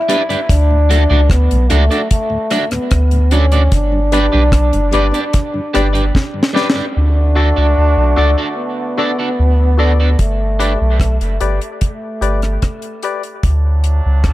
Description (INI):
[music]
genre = dub reggae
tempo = 74 BPM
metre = 4/4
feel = straight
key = D major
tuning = A4 = 440 Hz
[part]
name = mellow trombone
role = melody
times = 0.0-13.0 s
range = A3 to E4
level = -19 LUFS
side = equal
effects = dub echo
[part]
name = electric guitar at the edge of break-up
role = accompaniment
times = 0.1-10.7 s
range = D4 to D5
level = -21 LUFS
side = right 3 dB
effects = wide subtle chorus, high-pass filter, dub echo
[part]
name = mellow tonewheel organ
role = accompaniment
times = 0.1-6.8 s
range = D2 to D4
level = -25 LUFS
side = left 1 dB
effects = slow rotary speaker, dub echo
[part]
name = deep reggae drum kit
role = drums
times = 0.1-14.3 s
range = hi-hat, kick drum, rim click, snare drum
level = -16 LUFS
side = equal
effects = none
[part]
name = soft dub sub bass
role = bass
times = 0.5-14.3 s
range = F#1 to D2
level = -12 LUFS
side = equal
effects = none
[part]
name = percussive organ stab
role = stabs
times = 4.1-13.2 s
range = F#4 to D5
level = -23 LUFS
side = left 6 dB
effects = chorus, high-pass filter, dub echo
[part]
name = brilliant trombone section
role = second line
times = 6.9-14.3 s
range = A2 to F#4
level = -26 LUFS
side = right 5 dB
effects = high-pass filter, dub echo
[sound]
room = light reverb, small room ambience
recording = none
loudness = -12 LUFS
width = side -16 dB against mid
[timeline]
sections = 0.0-7.0 A section; 7.0-14.3 B section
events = break 0.0-3.7, 10.2-14.3; drum fill 6.1-7.0; part muted 7.0-10.2; filter sweep 10.2-14.3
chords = 0.5 D; 3.7 G; 7.0 D; 10.2 G; 13.4 D